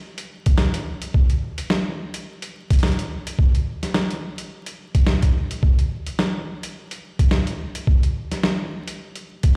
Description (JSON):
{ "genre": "glitch hop", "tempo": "107 BPM", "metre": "4/4", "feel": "swing 57% on 16ths", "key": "none", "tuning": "none", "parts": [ { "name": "boom bap sampler-style drum kit", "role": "drums", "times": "0.2-9.5 s", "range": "hi-hat, snare drum", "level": "-28 LUFS", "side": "equal", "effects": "none" }, { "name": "electronic kick drum", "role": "drums", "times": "0.5-9.5 s", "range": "none", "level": "-19 LUFS", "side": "equal", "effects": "none" } ], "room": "moderate plate reverb, RT60 2.7 s", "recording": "played on a big sound system in a bare room, large studio reverb, vinyl crackle", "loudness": "-22 LUFS", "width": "mono", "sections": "0.0-9.6 A section", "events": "none", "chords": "none" }